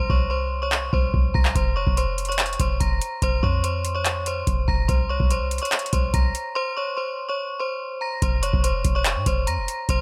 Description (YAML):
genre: hip hop, trap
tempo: 144 BPM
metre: 4/4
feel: half-time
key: unclear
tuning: A4 = 440 Hz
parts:
  - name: metallic FM bell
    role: melody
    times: 0.0-10.0 s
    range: C5 to Bb6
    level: -28 LUFS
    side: equal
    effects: chorus, low-pass filter
  - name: clean 808-style bass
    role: bass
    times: 0.0-10.0 s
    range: F1 to Ab2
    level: -27 LUFS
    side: equal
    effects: none
  - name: booming analog drum machine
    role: drums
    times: 0.1-10.0 s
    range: handclaps, hi-hat, kick drum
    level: -25 LUFS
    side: equal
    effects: none
room: digital ambience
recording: none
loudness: -23 LUFS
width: mono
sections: 0.0-8.2 A section; 8.2-10.0 B section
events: break 0.0-1.6, 6.6-8.2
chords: 0.0 Bbmadd9/C; 1.6 F5; 4.9 Bbmadd9/C; 8.2 F5